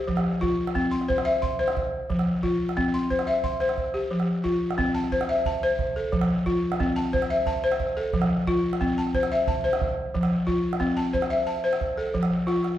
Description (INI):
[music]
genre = west african traditional, West African string and xylophone music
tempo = 119 BPM (dotted quarters)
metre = 12/8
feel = straight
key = C major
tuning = A4 = 440 Hz
[part]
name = balafon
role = arpeggios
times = 0.0-12.8 s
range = F3 to C6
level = -23 LUFS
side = left 1 dB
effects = none
[part]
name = calabash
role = percussion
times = 0.1-12.8 s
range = none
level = -31 LUFS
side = right 3 dB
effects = none
[sound]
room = wet large studio reverb, RT60 1.3 s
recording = band playing live in one room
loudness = -22 LUFS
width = side -12 dB against mid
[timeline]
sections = 0.0-4.8 A section; 4.8-12.8 B section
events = drum fill 12.3-12.8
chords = 0.0 F5; 0.8 C; 1.8 F5; 2.8 C; 3.8 F5; 4.8 C; 5.8 F; 6.8 C; 7.8 F; 8.8 C; 9.8 F; 10.8 C; 11.8 F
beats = 0.25 | 0.75 1.26 1.76 2.27 | 2.77 3.27 3.78 4.28 | 4.79 5.29 5.79 6.30 | 6.80 7.30 7.80 8.30 | 8.81 9.31 9.81 10.31 | 10.81 11.31 11.81 12.31